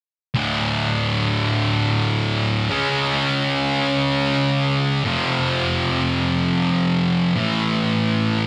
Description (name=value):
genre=rock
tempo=free time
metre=none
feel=none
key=unclear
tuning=A4 = 440 Hz
part: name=thick fuzz guitar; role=solo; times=0.3-8.5 s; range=D2 to C#4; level=-20 LUFS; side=equal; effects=distortion
room=moderate studio reverb, RT60 0.9 s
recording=none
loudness=-20 LUFS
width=mono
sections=0.4-8.5 A section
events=none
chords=0.4 D5; 2.7 C#5; 5.0 F5; 7.4 A5